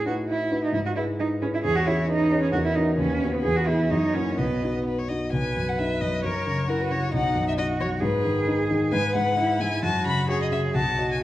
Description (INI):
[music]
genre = quick classical-period movement for piano trio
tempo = 133 BPM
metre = 2/4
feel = rubato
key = B major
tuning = A4 = 439 Hz
[part]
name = clear cello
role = second line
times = 0.0-11.2 s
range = B3 to B4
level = -26 LUFS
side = right 3 dB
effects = none
[part]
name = dark concert grand piano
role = accompaniment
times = 0.0-11.2 s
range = B1 to D#5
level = -25 LUFS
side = left 1 dB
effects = none
[part]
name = rich violin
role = melody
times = 0.1-11.2 s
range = A#4 to B5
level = -29 LUFS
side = left 3 dB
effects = none
[sound]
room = wet recital hall reverb, RT60 1.5 s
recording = worn, warbling old tape, cassette tape, warbly pitch drift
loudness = -22 LUFS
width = side -14 dB against mid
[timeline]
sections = 0.0-5.3 A section; 5.3-11.2 B section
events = none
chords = 0.0 B7/A; 0.7 E/G#; 1.6 C#m/E; 2.5 F#7/E; 3.0 B/D#; 3.5 E; 3.9 F#7; 4.4 B; 6.2 F#7; 7.1 B; 8.0 G#m; 8.9 E/G#; 9.8 F#5; 10.8 B7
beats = 0.29 | 0.75 1.20 | 1.65 2.09 | 2.53 2.99 | 3.45 3.91 | 4.39 4.86 | 5.33 5.79 | 6.25 6.70 | 7.14 7.59 | 8.03 8.48 | 8.93 9.37 | 9.83 10.29 | 10.75 11.23